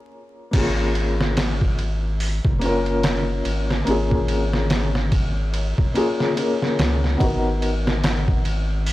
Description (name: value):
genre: trip hop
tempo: 72 BPM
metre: 4/4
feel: swing 59% on 16ths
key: unclear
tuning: A4 = 442 Hz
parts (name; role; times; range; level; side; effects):
- felt-muted upright piano; accompaniment; 0.0-8.9 s; A#3 to A#4; -24 LUFS; left 2 dB; tremolo, tape echo
- round analog bass; bass; 0.5-8.9 s; F#1 to C#2; -23 LUFS; equal; none
- trip hop sampler-style drum kit; drums; 0.5-8.9 s; crash cymbal, hi-hat, kick drum, ride cymbal, snare drum; -23 LUFS; equal; none
room: little or no reverb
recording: dry, gritty hardware recording, vinyl crackle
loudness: -19 LUFS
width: side -16 dB against mid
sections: 0.5-8.9 A section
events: break 0.0-0.5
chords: 0.0 A#m7; 0.5 F#maj7; 7.2 G#m7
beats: | 0.54 1.37 2.20 3.04 | 3.87 4.70 5.54 6.37 | 7.20 8.04 8.87